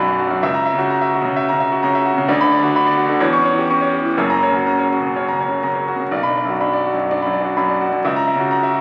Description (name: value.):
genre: classical, virtuoso piano study.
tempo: 128 BPM.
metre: 4/4.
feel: rubato.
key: B minor.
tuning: A4 = 443 Hz.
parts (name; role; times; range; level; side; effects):
clear concert grand piano; solo; 0.0-8.8 s; F#1 to C#6; -18 LUFS; equal; none.
room: wet recital hall reverb, RT60 1.4 s.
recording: very old 78 rpm record, vinyl crackle.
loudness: -18 LUFS.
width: mono.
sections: 0.0-8.8 A section.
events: none.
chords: 0.4 F#7/C#; 2.3 Bm/D; 3.2 C#dim/E; 4.2 F#; 6.1 Bm; 8.0 F#7/C#.